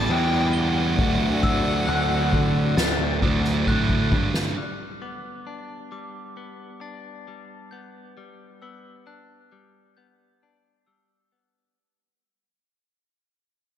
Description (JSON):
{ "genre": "post-rock", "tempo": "67 BPM", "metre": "4/4", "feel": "straight", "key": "G major", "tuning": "A4 = 440 Hz", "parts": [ { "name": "warm violin", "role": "melody", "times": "0.0-3.7 s", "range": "F#5 to A5", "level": "-29 LUFS", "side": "left 4 dB", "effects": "analog delay" }, { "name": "warm analog pad", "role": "sustained chords", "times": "0.0-4.5 s", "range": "D3 to D5", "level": "-35 LUFS", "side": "left 4 dB", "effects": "none" }, { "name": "glockenspiel with hard plastic mallets", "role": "arpeggios", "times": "0.0-11.8 s", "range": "D6 to G7", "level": "-34 LUFS", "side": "left 3 dB", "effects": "analog delay" }, { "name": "sludgy distorted guitar", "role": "riff", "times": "0.0-4.6 s", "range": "D3 to E4", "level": "-25 LUFS", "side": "right 4 dB", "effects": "overdrive" }, { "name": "fuzz picked electric bass", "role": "bass", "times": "0.0-4.6 s", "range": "D2 to D3", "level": "-25 LUFS", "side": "left 1 dB", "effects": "overdrive" }, { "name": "soft-mallet drum kit", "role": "drums", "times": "0.1-4.6 s", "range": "crash cymbal, kick drum, snare drum", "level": "-26 LUFS", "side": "left 1 dB", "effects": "none" }, { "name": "clean electric guitar", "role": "arpeggios", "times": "4.6-11.8 s", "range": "G3 to D4", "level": "-41 LUFS", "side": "left 4 dB", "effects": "analog delay" } ], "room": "moderate plate reverb, RT60 2.8 s", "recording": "dreamy mix soaked in reverb", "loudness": "-19 LUFS", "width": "side -10 dB against mid", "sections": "0.0-4.6 A section; 4.6-11.8 B section", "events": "drum fill 3.7-4.6; fade-out 4.6-11.8", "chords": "0.0 Em7; 1.0 D7; 4.6 Gmaj7" }